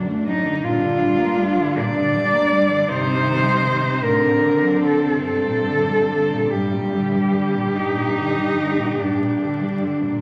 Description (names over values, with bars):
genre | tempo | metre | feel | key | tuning
classical, lyrical piece for cello ensemble | 47-55 BPM (dotted quarters) | 12/8 | rubato | G minor | A4 = 440 Hz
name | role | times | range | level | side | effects
rich cello | second line | 0.0-10.2 s | G3 to Eb4 | -27 LUFS | equal | none
warm cello | accompaniment | 0.0-10.2 s | G2 to Bb3 | -28 LUFS | equal | none
warm cello | bass | 0.0-10.0 s | F#2 to D3 | -26 LUFS | equal | none
warm cello | melody | 0.3-9.8 s | Eb4 to D5 | -23 LUFS | equal | none
room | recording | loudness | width
wet recital hall reverb, RT60 1.6 s | vinyl crackle | -20 LUFS | mono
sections
0.0-10.2 A section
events
none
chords
0.0 D/F#; 0.6 Gm; 2.9 Cm/G; 4.0 D7/A; 5.2 Gm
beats
| 0.64 1.79 2.89 4.03 | 5.25 6.51 7.75 9.00